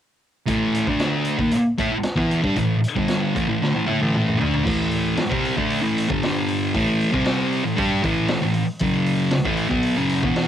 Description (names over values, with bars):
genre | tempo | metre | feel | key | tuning
garage rock duo or trio | 115 BPM | 4/4 | straight | unclear | A4 = 439 Hz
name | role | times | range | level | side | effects
thick fuzz guitar | riff | 0.5-10.5 s | E2 to G4 | -19 LUFS | equal | distortion, cassette tape
raw garage drum kit | drums | 0.5-10.5 s | crash cymbal, hi-hat, kick drum, snare drum, toms | -27 LUFS | equal | cassette tape
room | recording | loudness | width
light reverb | home recording on cassette | -19 LUFS | side -10 dB against mid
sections
0.5-4.7 A section; 4.7-10.5 B section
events
drum fill 3.6-4.7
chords
0.5 A5; 0.9 D5; 1.4 A5; 6.1 G5; 6.7 A5; 7.1 C5; 7.6 A5; 8.8 F#5; 9.3 F#madd11